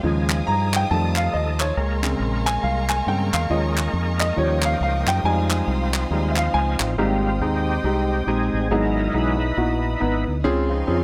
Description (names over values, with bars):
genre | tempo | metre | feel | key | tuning
uptempo gospel | 138 BPM | 4/4 | swing 60% on 8ths | Ab major | A4 = 437 Hz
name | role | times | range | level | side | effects
clear grand piano | accompaniment | 0.0-11.0 s | Ab2 to Bb5 | -26 LUFS | equal | none
overdriven tonewheel organ | sustained chords | 0.0-11.0 s | F3 to B4 | -29 LUFS | equal | slow rotary speaker, chorus vibrato
warm studio string section | sustained chords | 0.0-11.0 s | Eb5 to Eb6 | -37 LUFS | equal | none
deep dub fingered electric bass | bass | 0.0-11.0 s | Ab1 to G2 | -26 LUFS | equal | none
group handclap | percussion | 0.3-6.9 s | none | -28 LUFS | equal | none
room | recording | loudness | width
moderate recital hall reverb, RT60 1.3 s, small room ambience | none | -22 LUFS | mono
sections
0.0-7.0 A section; 7.0-11.0 B section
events
grand piano solo 0.0-7.0; tonewheel organ solo 7.0-11.0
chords
0.0 Eb9sus4; 0.9 F7; 1.8 Bbm9; 3.5 Eb7sus4; 4.4 Eb9; 5.2 Fm7; 7.0 Abmaj7; 8.7 Emaj7/G#; 10.4 Dbmaj7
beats
| 0.03 0.47 0.90 1.34 | 1.77 2.21 2.64 3.07 | 3.51 3.94 4.38 4.81 | 5.24 5.67 6.11 6.54 | 6.98 7.41 7.84 8.28 | 8.71 9.15 9.58 10.02 | 10.45 10.88